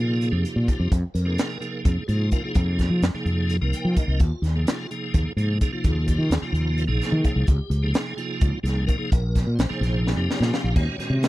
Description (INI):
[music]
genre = electric jazz fusion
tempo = 256 BPM (eighths)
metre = 7/8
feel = straight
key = unclear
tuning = A4 = 445 Hz
[part]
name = tonewheel organ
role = accompaniment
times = 0.0-11.3 s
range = Bb2 to G5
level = -29 LUFS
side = right 1 dB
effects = slow rotary speaker, overdrive, chorus vibrato
[part]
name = mellow fretless electric bass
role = bass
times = 0.0-11.3 s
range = Bb1 to F3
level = -22 LUFS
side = equal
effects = none
[part]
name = crisp fusion drum kit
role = drums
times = 0.2-11.3 s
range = crash cymbal, hi-hat, kick drum, snare drum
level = -24 LUFS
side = equal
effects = none
[sound]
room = little or no reverb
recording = none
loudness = -21 LUFS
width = side -17 dB against mid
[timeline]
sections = 0.0-10.7 A section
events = tonewheel organ fill 3.5-4.2, 10.0-10.7; drum fill 10.0-10.7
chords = 0.0 Bb9sus4; 0.9 Fm7; 4.2 Ebsus24; 7.5 Dbmaj9; 9.1 Bbsus2; 10.7 Ebm7